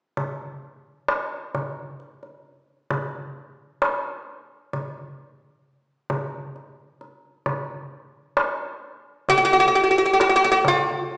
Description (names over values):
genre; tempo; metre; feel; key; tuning
Arabic maqam ensemble; 132 BPM (eighths); 10/8; straight; unclear; A4 = 440 Hz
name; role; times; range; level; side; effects
darbuka; percussion; 0.2-11.2 s; none; -26 LUFS; equal; none
oud; melody; 9.3-11.2 s; F#4-50c to G4-40c; -15 LUFS; equal; none
room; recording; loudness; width
wet recital hall reverb, RT60 1.5 s; recorded in a church or concert hall, small speaker sound; -20 LUFS; side -35 dB against mid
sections
0.2-9.3 A section; 9.3-11.2 B section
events
none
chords
none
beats
| 0.17 0.63 1.08 1.54 2.00 2.45 2.91 3.36 3.82 4.27 | 4.73 5.18 5.64 6.09 6.55 7.00 7.46 7.92 8.37 8.82 | 9.28 9.73 10.19 10.64 11.10